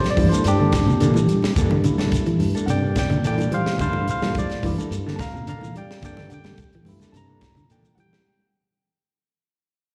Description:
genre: afrobeat.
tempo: 108 BPM.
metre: 4/4.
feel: straight.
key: G dorian.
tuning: A4 = 441 Hz.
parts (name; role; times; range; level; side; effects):
barky tine electric piano; accompaniment; 0.0-8.3 s; A3 to Bb5; -29 LUFS; equal; slapback echo.
fingered electric bass; bass; 0.0-8.2 s; G2 to G3; -26 LUFS; equal; none.
tight funk drum kit; drums; 0.0-8.2 s; hi-hat, kick drum, snare drum; -30 LUFS; equal; none.
semi-hollow electric guitar; arpeggios; 0.2-8.2 s; C3 to F3; -28 LUFS; equal; subtle chorus, slapback echo.
congas; percussion; 0.2-8.2 s; none; -32 LUFS; equal; slapback echo.
shekere; percussion; 0.2-8.1 s; none; -32 LUFS; equal; slapback echo.
mellow electric guitar; stabs; 0.3-7.9 s; E3 to A4; -32 LUFS; equal; slapback echo.
room: light reverb.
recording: live gig heard through the venue's PA, recital hall reverb.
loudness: -21 LUFS.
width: mono.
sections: 0.0-8.3 A section.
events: fade-out 0.0-8.3; tine electric piano solo 0.0-8.3.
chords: 0.0 Gm69.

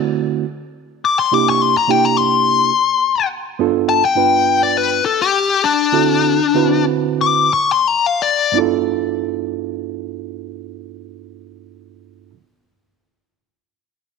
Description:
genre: blues.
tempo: 84-105 BPM.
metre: 4/4.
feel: swing 54% on 16ths.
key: G mixolydian.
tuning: A4 = 440 Hz.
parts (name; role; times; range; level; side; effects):
reed electric piano; accompaniment; 0.0-12.4 s; G2 to B4; -19 LUFS; right 13 dB; none.
dark smooth lead guitar; melody; 1.0-8.6 s; D4 to D6; -15 LUFS; left 7 dB; overdrive.
room: moderate echo chamber reverb, RT60 1.9 s.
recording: 1960s-style stereo with parts hard left and right.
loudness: -14 LUFS.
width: side -5 dB against mid.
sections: 0.0-8.6 A section; 8.6-11.4 B section.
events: lead electric guitar solo 0.0-8.6; slowing down 3.6-8.6.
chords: 0.0 D9; 1.3 C9; 3.6 G9; 5.9 D9; 8.6 G13.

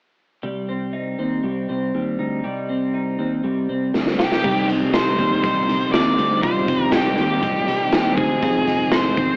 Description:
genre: jangly indie pop.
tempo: 120 BPM.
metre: 4/4.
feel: straight.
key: C minor.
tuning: A4 = 438 Hz.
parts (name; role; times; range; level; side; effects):
twelve-string electric guitar; arpeggios; 0.4-9.4 s; G3 to Ab4; -26 LUFS; equal; subtle chorus.
picked electric bass; bass; 0.4-9.4 s; F1 to Eb2; -29 LUFS; equal; none.
raw garage drum kit; drums; 3.9-9.3 s; crash cymbal, hi-hat, kick drum, snare drum; -25 LUFS; equal; cassette tape.
octave-fuzz lead guitar; melody; 4.2-9.4 s; G4 to D5; -24 LUFS; equal; distortion, cassette tape.
crunchy overdriven guitar; accompaniment; 4.4-9.4 s; F2 to Eb4; -29 LUFS; equal; none.
warm analog keys; accompaniment; 4.4-9.4 s; C4 to Ab4; -29 LUFS; equal; none.
room: light reverb.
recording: home recording on cassette, AM radio sound.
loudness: -20 LUFS.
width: mono.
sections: 0.4-4.4 A section; 4.4-9.4 B section.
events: drum fill 3.9-4.4.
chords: 0.4 Cm; 8.4 Fm7.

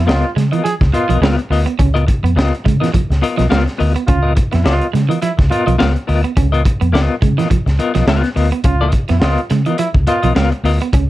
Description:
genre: funk.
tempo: 105 BPM.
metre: 4/4.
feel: swing 56% on 16ths.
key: Db mixolydian.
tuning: A4 = 442 Hz.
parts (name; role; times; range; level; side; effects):
bright trombone; second line; 0.0-10.3 s; Fb4 to Ab4; -20 LUFS; right 2 dB; none.
electric guitar at the edge of break-up; riff; 0.0-11.0 s; Fb3 to Db4; -20 LUFS; right 7 dB; none.
vintage muted fingered electric bass; bass; 0.0-11.1 s; Cb2 to Db3; -15 LUFS; equal; none.
semi-hollow electric guitar; accompaniment; 0.1-11.0 s; Cb4 to F5; -19 LUFS; left 5 dB; tremolo.
crunchy breakbeat drum kit; drums; 0.1-11.1 s; hi-hat, kick drum, snare drum; -17 LUFS; equal; none.
room: little or no reverb.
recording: dark, warm production.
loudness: -12 LUFS.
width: side -16 dB against mid.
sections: 0.0-11.1 A section.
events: none.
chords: 0.0 Db13.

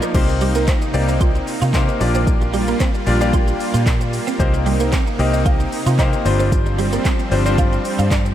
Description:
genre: dance-pop.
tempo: 113 BPM.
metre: 4/4.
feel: straight.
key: C minor.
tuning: A4 = 441 Hz.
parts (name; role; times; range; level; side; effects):
bright concert grand piano; accompaniment; 0.0-8.2 s; G3 to Eb5; -22 LUFS; left 3 dB; sidechain pumping.
supersaw pad; sustained chords; 0.0-8.3 s; C3 to F4; -24 LUFS; right 1 dB; sidechain pumping.
twelve-string electric guitar; riff; 0.0-8.3 s; G3 to F4; -25 LUFS; right 6 dB; ensemble chorus.
deep house drum kit; drums; 0.0-8.3 s; crash cymbal, handclaps, hi-hat, kick drum, shaker; -20 LUFS; equal; none.
vintage muted fingered electric bass; bass; 0.1-8.3 s; G1 to C3; -19 LUFS; equal; sidechain pumping.
room: moderate church reverb, RT60 3.6 s.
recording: dreamy mix soaked in reverb.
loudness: -15 LUFS.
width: side -11 dB against mid.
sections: 0.1-8.3 A section.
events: none.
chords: 0.1 Cm7; 2.0 Gm7/Bb; 4.4 Cm7; 6.3 G7sus4.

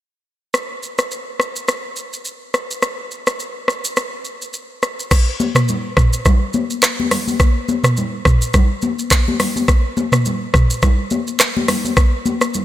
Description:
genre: afrobeats.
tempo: 105 BPM.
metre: 4/4.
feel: swing 55% on 16ths.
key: none.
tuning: none.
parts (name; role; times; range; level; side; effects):
afro-pop drum kit; drums; 0.5-12.6 s; crash cymbal, handclaps, hi-hat, kick drum, rim click, shaker, toms; -16 LUFS; equal; none.
congas; percussion; 5.4-12.6 s; none; -21 LUFS; left 3 dB; none.
room: light reverb.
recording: none.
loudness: -15 LUFS.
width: side -13 dB against mid.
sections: 0.5-5.1 A section; 5.1-12.6 B section.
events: none.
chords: none.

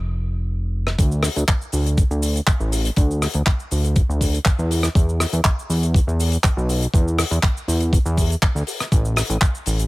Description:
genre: nu-disco, nu disco.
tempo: 121 BPM.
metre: 4/4.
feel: straight.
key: D dorian.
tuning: A4 = 440 Hz.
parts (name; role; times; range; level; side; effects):
fat analog bass; bass; 0.0-9.9 s; F1 to E2; -20 LUFS; equal; none.
damped 70s drum kit; drums; 0.9-9.9 s; cabasa, handclaps, hi-hat, rim click; -24 LUFS; left 1 dB; none.
electronic kick drum; drums; 1.0-9.5 s; none; -17 LUFS; equal; none.
room: little or no reverb.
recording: none.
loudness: -17 LUFS.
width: side -20 dB against mid.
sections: 1.0-9.9 A section.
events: drop 1.0-9.9.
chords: none.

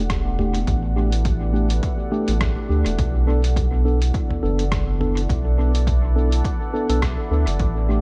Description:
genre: ambient dub.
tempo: 104 BPM.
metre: 4/4.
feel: swing 56% on 16ths.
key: unclear.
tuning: A4 = 440 Hz.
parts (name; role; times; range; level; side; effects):
deep dark ambient pad; sustained chords; 0.0-8.0 s; B3 to F#5; -32 LUFS; equal; chorus, built-in reverb.
warm sub bass; bass; 0.0-8.0 s; E1 to D2; -22 LUFS; equal; none.
electronic kick drum; drums; 0.1-7.7 s; none; -28 LUFS; equal; overdrive, small room reverb.
lo-fi sampler-style drum kit; drums; 0.1-7.7 s; hi-hat, rim click, toms; -34 LUFS; equal; small room reverb, dub echo.
mellow tine electric piano; stabs; 0.4-8.0 s; A3 to A4; -28 LUFS; equal; dub echo.
room: digital ambience.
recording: nothing above 10.6 kHz.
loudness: -21 LUFS.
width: mono.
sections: 0.0-8.0 A section.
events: none.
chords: 0.0 A7sus4; 3.0 Bm7.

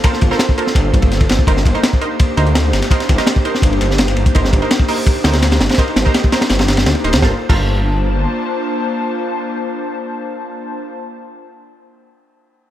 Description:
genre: drum and bass, jungle.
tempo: 167 BPM.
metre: 4/4.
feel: straight.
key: G minor.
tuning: A4 = 441 Hz.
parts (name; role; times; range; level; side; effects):
airy breathy pad; sustained chords; 0.0-10.9 s; Bb3 to A5; -21 LUFS; left 1 dB; chorus.
orchestra-hit-like synth stab; stabs; 0.0-11.6 s; Eb4 to C5; -22 LUFS; right 3 dB; built-in reverb, cassette tape, dub echo.
crunchy breakbeat drum kit; drums; 0.0-7.6 s; crash cymbal, hi-hat, kick drum, ride cymbal, snare drum; -14 LUFS; equal; none.
dusty soul sampler-style drum kit; drums; 0.0-7.2 s; hi-hat, snare drum; -28 LUFS; left 2 dB; high-pass filter on snare, high-pass filter on hats, high-pass filter on room.
detuned saw bass; bass; 0.2-8.3 s; D1 to D2; -16 LUFS; equal; none.
room: light reverb, small room ambience.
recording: none.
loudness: -12 LUFS.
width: side -12 dB against mid.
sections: 0.0-7.2 A section; 7.2-10.1 B section.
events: drop 0.0-7.2.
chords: 0.0 Gm11; 1.5 Cm7/G; 7.2 Gm11.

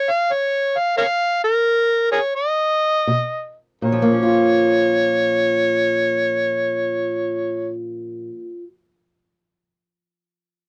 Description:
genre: acoustic country blues, solo or duo.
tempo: 77-95 BPM.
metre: 4/4.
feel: swing 68% on 8ths.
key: Bb minor.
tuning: A4 = 438 Hz.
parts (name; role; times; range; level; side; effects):
overdriven harmonica; melody; 0.0-7.7 s; Ab4 to F5; -20 LUFS; equal; none.
fingerpicked steel-string acoustic guitar; accompaniment; 3.1-8.6 s; Bb2 to F4; -23 LUFS; equal; none.
room: little or no reverb.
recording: dry, close 1970s-style studio recording.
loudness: -19 LUFS.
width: mono.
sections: 0.0-3.8 A section; 3.8-6.9 B section.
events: slowing down 0.0-3.8; stop 0.0-3.1.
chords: 0.0 N.C.; 3.8 Bbm.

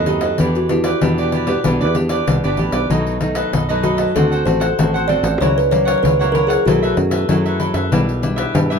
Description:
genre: samba and choro.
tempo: 96 BPM.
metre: 4/4.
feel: straight.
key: E minor.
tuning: A4 = 440 Hz.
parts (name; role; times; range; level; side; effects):
kalimba; melody; 0.0-7.6 s; E4 to D5; -20 LUFS; equal; none.
cavaquinho; accompaniment; 0.0-8.8 s; D4 to F#5; -22 LUFS; right 2 dB; none.
nylon-string guitar; accompaniment; 0.0-8.8 s; F#2 to G4; -22 LUFS; left 1 dB; none.
fingered electric bass; bass; 0.0-8.8 s; G1 to G2; -21 LUFS; right 1 dB; none.
pandeiro; percussion; 0.1-8.8 s; none; -21 LUFS; left 3 dB; none.
room: light reverb.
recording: minimal, uncompressed stereo recording.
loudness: -14 LUFS.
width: side -6 dB against mid.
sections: 0.0-2.9 A section; 2.9-8.8 B section.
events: none.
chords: 0.4 Em7; 2.9 B7; 4.2 D7; 5.4 F#7/C#; 6.7 B7sus4; 7.9 Em7/B.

